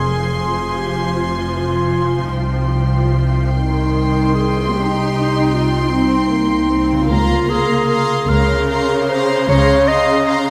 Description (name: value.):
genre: cinematic, emotional film score for orchestra.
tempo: 51 BPM (dotted quarters).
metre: 6/8.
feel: rubato.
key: unclear.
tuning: A4 = 440 Hz.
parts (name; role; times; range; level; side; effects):
warm chamber violin section; melody; 0.0-10.5 s; C6; -29 LUFS; equal; none.
clear clarinet; second line; 0.0-10.4 s; Eb4 to Eb5; -21 LUFS; equal; none.
warm symphonic violin section; second line; 0.0-10.5 s; F5 to C6; -26 LUFS; equal; none.
dark symphonic viola section; accompaniment; 0.0-10.5 s; Db3 to Eb4; -23 LUFS; equal; none.
concert harp; arpeggios; 0.0-10.5 s; C3 to C6; -30 LUFS; equal; none.
dark chamber cello section; bass; 0.0-10.5 s; C2 to F2; -25 LUFS; equal; none.
warm chamber double bass section; bass; 0.0-10.5 s; F1 to Db2; -23 LUFS; equal; none.
room: wet scoring stage reverb, RT60 1.5 s.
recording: none.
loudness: -16 LUFS.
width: mono.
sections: 0.0-10.5 A section.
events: none.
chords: 0.0 Fm; 2.4 Cm; 7.1 Bbmadd9/Db.